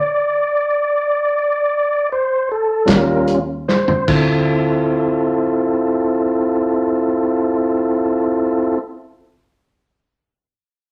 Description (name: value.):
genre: slow blues.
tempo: 48-58 BPM (dotted quarters).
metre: 12/8.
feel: straight.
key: D minor.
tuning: A4 = 440 Hz.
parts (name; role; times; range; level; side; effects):
tonewheel organ; sustained chords; 0.0-8.8 s; G3 to D5; -18 LUFS; equal; slow rotary speaker.
vintage muted fingered electric bass; bass; 2.9-8.8 s; D2 to Eb2; -26 LUFS; equal; none.
vintage drum kit; drums; 2.9-4.3 s; crash cymbal, hi-hat, kick drum, snare drum, toms; -21 LUFS; equal; none.
room: moderate large studio reverb, RT60 0.8 s.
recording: none.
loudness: -17 LUFS.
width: mono.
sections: 0.0-4.1 A section; 4.1-9.0 B section.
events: slowing down 0.0-4.1; tonewheel organ solo 0.0-4.1; stop 0.0-2.9; drum fill 3.7-4.1.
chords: 0.0 D5; 2.9 Eb7; 4.1 Dm7.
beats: 0.67 1.75 2.89 | 4.08 5.32 6.56 7.79.